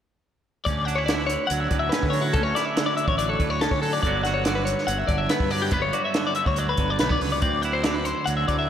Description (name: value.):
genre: math rock and midwest emo.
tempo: 142 BPM.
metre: 4/4.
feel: straight.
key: D major.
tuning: A4 = 440 Hz.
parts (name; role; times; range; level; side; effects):
clean electric guitar; accompaniment; 0.7-8.7 s; D2 to F#4; -28 LUFS; right 6 dB; none.
twelve-string electric guitar; arpeggios; 0.7-8.7 s; F#4 to F#5; -25 LUFS; left 5 dB; slapback echo.
fuzz fingered electric bass; bass; 0.7-8.7 s; G1 to D3; -28 LUFS; equal; overdrive.
compact cocktail drum kit; drums; 0.7-8.6 s; hi-hat, kick drum, snare drum; -27 LUFS; right 1 dB; none.
room: moderate lush hall reverb, RT60 2.2 s.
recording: big arena sound.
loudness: -21 LUFS.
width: side -9 dB against mid.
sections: 0.7-8.7 A section.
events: none.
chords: 0.7 Dmaj9; 4.0 Gmaj7; 7.4 D9.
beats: | 0.66 1.08 1.50 1.93 | 2.35 2.77 3.19 3.62 | 4.04 4.46 4.89 5.31 | 5.73 6.16 6.58 7.00 | 7.43 7.85 8.27.